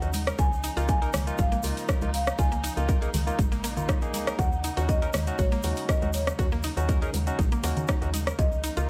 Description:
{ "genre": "afro house", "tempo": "120 BPM", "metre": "4/4", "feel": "swing 53% on 16ths", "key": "Eb minor", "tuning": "A4 = 440 Hz", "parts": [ { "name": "marimba with medium mallets", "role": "melody", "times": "0.0-8.9 s", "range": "Db5 to Ab5", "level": "-36 LUFS", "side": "equal", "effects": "vintage 12-bit sampler grit, digital delay" }, { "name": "dark chamber string section", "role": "sustained chords", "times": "0.0-8.9 s", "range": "Db3 to Eb4", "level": "-42 LUFS", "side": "equal", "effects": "sidechain pumping" }, { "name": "barky tine electric piano", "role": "stabs", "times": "0.0-8.9 s", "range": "Bb3 to Bb4", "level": "-37 LUFS", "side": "equal", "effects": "sidechain pumping, digital delay" }, { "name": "woody FM bass", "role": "bass", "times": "0.0-8.9 s", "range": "Ab1 to Eb2", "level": "-32 LUFS", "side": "equal", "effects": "sidechain pumping" }, { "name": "afro-pop drum kit", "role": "drums", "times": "0.0-8.9 s", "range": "hi-hat, rim click", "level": "-35 LUFS", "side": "equal", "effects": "studio reverb" }, { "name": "egg shaker", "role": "percussion", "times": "0.0-8.9 s", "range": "none", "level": "-45 LUFS", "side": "equal", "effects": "none" }, { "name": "mallet-like synth pluck", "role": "arpeggios", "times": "0.1-8.8 s", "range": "Bb3 to Bb4", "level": "-40 LUFS", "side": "equal", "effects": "chorus, sidechain pumping, digital delay" }, { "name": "congas", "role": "percussion", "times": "0.1-8.2 s", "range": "none", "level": "-38 LUFS", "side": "equal", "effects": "none" }, { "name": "electronic kick drum", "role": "drums", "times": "0.4-8.5 s", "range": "none", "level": "-28 LUFS", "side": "equal", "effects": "overdrive, studio reverb" } ], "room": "small room ambience", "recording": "none", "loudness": "-27 LUFS", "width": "mono", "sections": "0.0-8.9 A section", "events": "none", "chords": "0.4 Db69; 4.4 Ebm7; 8.4 Db69" }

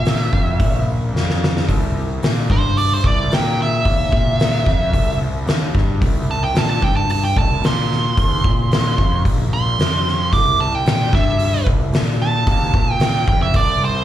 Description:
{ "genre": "blues rock power trio and southern rock", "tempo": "111 BPM", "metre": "4/4", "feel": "straight", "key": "C mixolydian", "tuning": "A4 = 441 Hz", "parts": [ { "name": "nasal lead guitar with a parked wah", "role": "second line", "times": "0.0-14.0 s", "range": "C5 to D6", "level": "-20 LUFS", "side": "right 3 dB", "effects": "overdrive, slapback echo" }, { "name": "fuzz picked electric bass", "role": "bass", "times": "0.0-14.0 s", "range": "Bb1 to Bb2", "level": "-20 LUFS", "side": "equal", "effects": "overdrive" }, { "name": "oversized low-tuned drum kit", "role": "drums", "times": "0.1-13.7 s", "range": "hi-hat, kick drum, snare drum", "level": "-18 LUFS", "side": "equal", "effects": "none" } ], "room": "studio ambience", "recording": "live gig heard through the venue's PA, club reverb", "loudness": "-15 LUFS", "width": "side -12 dB against mid", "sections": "0.0-14.0 A section", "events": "lead electric guitar solo 0.0-14.0; drum fill 1.1-1.7", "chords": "0.0 C5" }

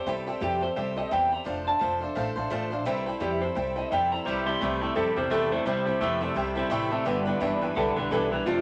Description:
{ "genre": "rockabilly", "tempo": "171 BPM", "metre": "4/4", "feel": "swing 58% on 8ths", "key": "C major", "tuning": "A4 = 441 Hz", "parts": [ { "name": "electric guitar through a small old amp", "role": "melody", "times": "0.0-8.6 s", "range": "F4 to C6", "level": "-30 LUFS", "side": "equal", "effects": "harmonic tremolo" }, { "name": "picked swing-style acoustic guitar", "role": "accompaniment", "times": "0.0-8.6 s", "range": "C3 to C5", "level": "-34 LUFS", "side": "equal", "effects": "none" }, { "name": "honky-tonk upright piano", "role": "accompaniment", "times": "0.1-8.6 s", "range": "B4 to A5", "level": "-36 LUFS", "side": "equal", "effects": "none" }, { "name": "upright bass", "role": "bass", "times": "0.1-8.6 s", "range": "F1 to F2", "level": "-38 LUFS", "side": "equal", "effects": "none" }, { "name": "twangy electric guitar", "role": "riff", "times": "4.3-8.6 s", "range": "F2 to A3", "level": "-31 LUFS", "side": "equal", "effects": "spring reverb" } ], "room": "moderate studio reverb, RT60 0.7 s", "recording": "none", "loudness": "-27 LUFS", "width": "mono", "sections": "0.0-8.6 A section", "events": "none", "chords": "0.0 C6; 1.5 F6; 2.9 C6; 7.1 G6" }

